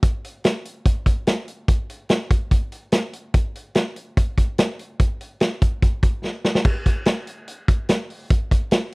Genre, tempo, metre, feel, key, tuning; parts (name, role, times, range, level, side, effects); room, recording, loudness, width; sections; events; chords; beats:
indie pop; 145 BPM; 4/4; straight
vintage drum kit; drums; 0.0-8.8 s; crash cymbal, hi-hat, kick drum, snare drum; -18 LUFS; equal
little or no reverb; dry, close 1970s-style studio recording; -19 LUFS; side -32 dB against mid
0.0-6.7 A section; 6.7-8.9 B section
drum fill 6.2-6.7
| 0.03 0.44 0.86 1.27 | 1.69 2.10 2.51 2.93 | 3.34 3.75 4.17 4.58 | 5.00 5.41 5.82 6.24 | 6.65 7.06 7.48 7.89 | 8.30 8.72